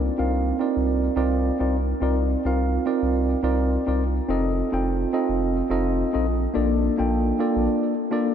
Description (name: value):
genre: sunset chillout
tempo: 106 BPM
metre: 4/4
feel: swing 55% on 16ths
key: C dorian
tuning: A4 = 443 Hz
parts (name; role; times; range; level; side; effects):
- tine electric piano; accompaniment; 0.0-8.3 s; Bb3 to G5; -22 LUFS; moving between left 3 dB and right 6 dB; auto-pan, vintage 12-bit sampler grit, ping-pong delay
- round analog bass; bass; 0.0-7.7 s; F1 to C2; -25 LUFS; equal; tube saturation
room: wet cathedral reverb, RT60 5.2 s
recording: dreamy mix soaked in reverb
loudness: -20 LUFS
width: side -8 dB against mid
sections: 0.0-8.3 A section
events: none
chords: 0.0 Cm11; 4.3 F7; 6.3 Bbmaj7